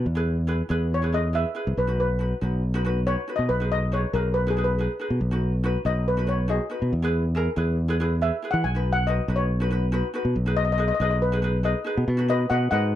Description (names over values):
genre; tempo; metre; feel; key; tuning
calypso; 140 BPM; 4/4; straight; B major; A4 = 440 Hz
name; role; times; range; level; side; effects
steel pan; melody; 0.0-13.0 s; G#4 to G#5; -26 LUFS; left 2 dB; none
ukulele; accompaniment; 0.0-13.0 s; D#4 to B4; -30 LUFS; equal; none
fingered electric bass; bass; 0.0-13.0 s; B1 to E3; -23 LUFS; equal; none
room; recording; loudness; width
light reverb; none; -22 LUFS; side -12 dB against mid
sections
0.0-12.1 A section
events
steel pan solo 0.0-12.1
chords
0.1 E; 1.8 B; 3.5 G#m/B; 5.2 B; 6.9 E; 8.6 Badd9; 10.4 G#m/B; 12.1 B